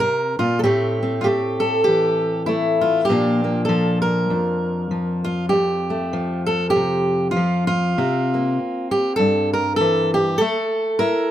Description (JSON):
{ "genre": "folk, solo fingerstyle acoustic guitar", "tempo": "98 BPM", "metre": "4/4", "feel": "swing 60% on 8ths", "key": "F major", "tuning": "A4 = 442 Hz", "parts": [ { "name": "fingerpicked steel-string acoustic guitar", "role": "solo", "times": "0.0-11.3 s", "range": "F2 to Bb4", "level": "-17 LUFS", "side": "equal", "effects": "none" } ], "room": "light reverb", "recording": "close, detailed microphones", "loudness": "-17 LUFS", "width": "side -11 dB against mid", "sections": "0.0-11.3 A section", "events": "none", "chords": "0.0 C7(no3); 0.6 Am7; 3.1 Bb; 5.5 Fadd9; 8.0 C7; 10.4 A5", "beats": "0.04 | 0.65 1.26 1.87 2.48 | 3.08 3.69 4.30 4.91 | 5.52 6.13 6.74 7.35 | 7.96 8.57 9.18 9.79 | 10.40 11.01" }